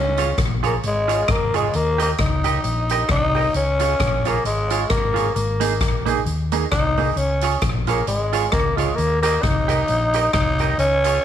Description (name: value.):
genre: ska.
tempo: 133 BPM.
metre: 4/4.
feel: swing 56% on 8ths.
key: unclear.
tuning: A4 = 440 Hz.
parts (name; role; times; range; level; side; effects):
growling tenor saxophone; melody; 0.0-11.2 s; Ab3 to Eb4; -21 LUFS; left 1 dB; slapback echo.
hollow-body short-scale fingered electric bass; bass; 0.0-11.2 s; Ab1 to Eb2; -23 LUFS; left 1 dB; none.
semi-hollow electric guitar; accompaniment; 0.2-11.2 s; Bb3 to Eb5; -25 LUFS; right 10 dB; lush chorus, slapback echo.
street-band drum kit; drums; 0.2-11.1 s; hi-hat, kick drum, rim click; -24 LUFS; left 1 dB; slapback echo.
room: moderate spring reverb, RT60 1.2 s, small room ambience.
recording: 1960s-style stereo.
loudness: -17 LUFS.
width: side -10 dB against mid.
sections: 0.0-11.2 A section.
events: none.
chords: 0.0 Db; 1.7 Eb; 3.5 Db; 5.4 Absus2; 7.2 Db; 9.0 Eb.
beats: 0.38 0.83 1.28 | 1.74 2.19 2.64 3.09 | 3.55 4.00 4.45 4.90 | 5.36 5.81 6.26 6.71 | 7.17 7.62 8.07 8.52 | 8.98 9.43 9.88 10.34 | 10.79 11.24.